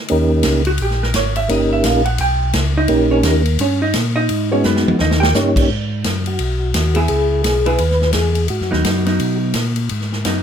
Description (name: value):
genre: soul jazz organ trio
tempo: 172 BPM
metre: 4/4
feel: swing 62% on 8ths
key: unclear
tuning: A4 = 443 Hz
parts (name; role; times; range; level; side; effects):
- percussive tonewheel organ; melody; 0.1-9.4 s; G#3 to C#5; -18 LUFS; equal; slow rotary speaker, chorus vibrato
- mellow tonewheel organ; bass; 0.1-10.4 s; G1 to B2; -18 LUFS; equal; overdrive, chorus vibrato, slow rotary speaker
- swinging big-band drum kit; drums; 0.1-10.3 s; crash cymbal, hi-hat, kick drum, ride cymbal, snare drum, toms; -22 LUFS; left 1 dB; none
- vintage hollow-body jazz guitar; accompaniment; 0.7-10.4 s; F#3 to G5; -19 LUFS; right 2 dB; none
room: little or no reverb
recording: minimal, uncompressed stereo recording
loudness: -14 LUFS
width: side -8 dB against mid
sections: 0.0-5.7 A section; 5.7-10.4 B section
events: hollow-body jazz guitar solo 0.0-5.7; drum fill 4.6-5.3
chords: 0.1 D#7; 4.3 G#m7; 5.0 D#7; 5.7 G#m7; 7.1 C#m7; 8.5 G#m7